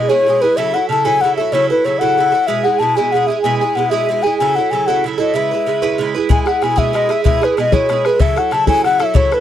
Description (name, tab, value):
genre	celtic folk, Celtic jig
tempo	126 BPM (dotted quarters)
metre	6/8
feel	straight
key	E major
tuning	A4 = 437 Hz
part	mellow baroque flute	melody	0.0-9.4 s	B4 to A5	-15 LUFS	left 4 dB	none
part	Irish bouzouki	accompaniment	0.0-9.4 s	B2 to B4	-17 LUFS	right 6 dB	none
part	bodhran	percussion	6.3-9.4 s	none	-15 LUFS	left 2 dB	none
room	light reverb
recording	dry, close 1970s-style studio recording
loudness	-13 LUFS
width	side -10 dB against mid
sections	0.0-6.3 A section; 6.3-9.4 A section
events	none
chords	0.0 E; 0.6 A6; 2.5 E; 4.4 A6; 5.3 E6; 6.3 E; 8.2 A6